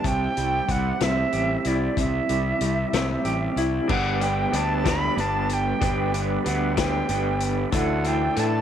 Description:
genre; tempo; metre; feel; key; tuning
psychedelic rock; 62 BPM (dotted quarters); 6/8; straight; unclear; A4 = 441 Hz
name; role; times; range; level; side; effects
bright reedy jazz flute; melody; 0.0-8.6 s; D5 to B5; -27 LUFS; right 2 dB; slapback echo
tonewheel organ; sustained chords; 0.0-8.6 s; E4 to B5; -36 LUFS; right 10 dB; slow rotary speaker
electric guitar through a small old amp; riff; 0.0-8.6 s; C3 to A4; -25 LUFS; equal; tremolo
fuzz fingered electric bass; bass; 0.0-8.6 s; G1 to A2; -27 LUFS; equal; overdrive
vintage drum kit; drums; 0.0-8.5 s; crash cymbal, hi-hat, kick drum, snare drum; -29 LUFS; left 4 dB; none
room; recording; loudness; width
light reverb, small room ambience; 1960s-style stereo; -21 LUFS; side -9 dB against mid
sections
0.0-3.9 A section; 3.9-8.6 B section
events
none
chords
0.1 C; 3.9 G; 7.7 Dsus2

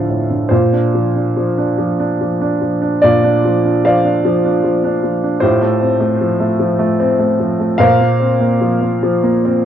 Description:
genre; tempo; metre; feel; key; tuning
classical, lyrical solo piano; 74 BPM; 3/4; uneven beats, rubato; Bb major; A4 = 440 Hz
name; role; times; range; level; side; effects
warm upright piano; solo; 0.0-9.7 s; D2 to F5; -12 LUFS; equal; none
room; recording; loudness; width
light reverb; worn, warbling old tape, cassette tape, warbly pitch drift; -12 LUFS; side -9 dB against mid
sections
0.0-9.7 A section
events
none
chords
0.0 Dm; 0.5 Bbadd9; 5.4 Fadd9/A; 7.8 Bbsus2

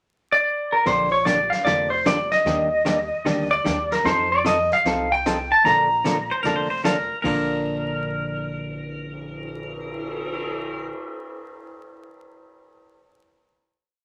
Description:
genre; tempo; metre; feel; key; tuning
country, western swing; 151 BPM; 4/4; swing 64% on 8ths; Bb major; A4 = 440 Hz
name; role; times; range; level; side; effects
clean lap steel guitar; melody; 0.3-6.8 s; Bb4 to Bb5; -22 LUFS; equal; none
hollow-body jazz guitar; accompaniment; 0.9-10.9 s; Bb2 to A4; -28 LUFS; equal; none
upright bass; bass; 0.9-10.9 s; F1 to F2; -39 LUFS; equal; none
vintage brush drum kit; drums; 0.9-10.3 s; brushed snare drum, crash cymbal, cymbal swell, hi-hat, kick drum, snare drum; -34 LUFS; equal; none
pedal steel guitar; second line; 6.3-10.9 s; Bb4 to C5; -32 LUFS; equal; none
room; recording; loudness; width
moderate club reverb, RT60 0.6 s; vinyl crackle; -22 LUFS; mono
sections
0.0-0.9 pickup bar; 0.9-7.2 A section; 7.2-10.4 final chord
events
none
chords
0.0 N.C.; 0.9 Bb6; 2.5 Ebmaj7; 4.1 F7; 5.6 Bbmaj7; 7.2 Bb

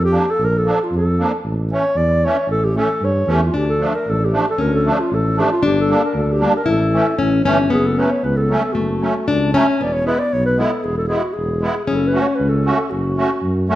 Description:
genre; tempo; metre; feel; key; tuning
klezmer; 115 BPM; 2/4; straight; A phrygian dominant, F# minor from 7.7 s; A4 = 440 Hz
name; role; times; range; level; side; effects
breathy clarinet; melody; 0.0-13.7 s; F4 to D5; -20 LUFS; equal; none
mellow tuba; bass; 0.0-13.7 s; E1 to G2; -20 LUFS; equal; none
musette accordion; accompaniment; 0.1-13.8 s; E3 to F#4; -21 LUFS; right 1 dB; none
nylon-string guitar; second line; 3.5-13.8 s; A3 to E4; -20 LUFS; left 3 dB; none
room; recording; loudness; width
moderate recital hall reverb, RT60 1.4 s; dark, warm production; -15 LUFS; side -14 dB against mid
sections
0.0-7.7 A section; 7.7-13.8 B section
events
none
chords
0.0 Bb; 1.4 A; 3.5 Dm; 5.6 Gm; 6.7 A; 7.7 F#m; 9.8 E; 11.9 F#m

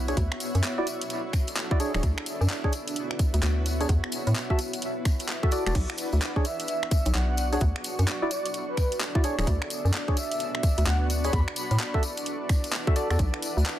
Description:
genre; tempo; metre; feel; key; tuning
UK garage, two-step garage; 129 BPM; 4/4; swing 63% on 16ths; B minor; A4 = 440 Hz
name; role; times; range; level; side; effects
warm analog pad; sustained chords; 0.0-13.8 s; D4 to E5; -39 LUFS; right 1 dB; chorus, sidechain pumping
hollow knocking FM bass; bass; 0.0-13.6 s; D1 to A2; -24 LUFS; equal; none
granular cloud pad; texture; 0.0-13.8 s; B3 to C#6; -35 LUFS; equal; built-in reverb, sidechain pumping
percussive organ stab; stabs; 0.1-13.2 s; D4 to E5; -32 LUFS; equal; analog chorus, tape echo
garage drum kit; drums; 0.1-13.8 s; crash cymbal, finger snaps, handclaps, hi-hat; -32 LUFS; equal; overdrive
tambourine; percussion; 0.1-13.8 s; none; -39 LUFS; left 4 dB; none
electronic kick drum; drums; 0.2-13.3 s; none; -25 LUFS; equal; overdrive
breathy flute-like synth lead; melody; 6.4-11.9 s; B4 to B5; -33 LUFS; equal; analog chorus, tape echo
room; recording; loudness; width
light reverb, digital ambience; dense, heavily limited modern master; -24 LUFS; side -12 dB against mid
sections
0.0-13.8 A section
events
none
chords
0.2 Dmaj9; 1.8 Bm69/D; 3.9 E7sus4; 5.8 Bm69; 7.6 Dmaj9; 9.2 Bm69/D; 11.3 E7sus4; 13.2 Bmadd9

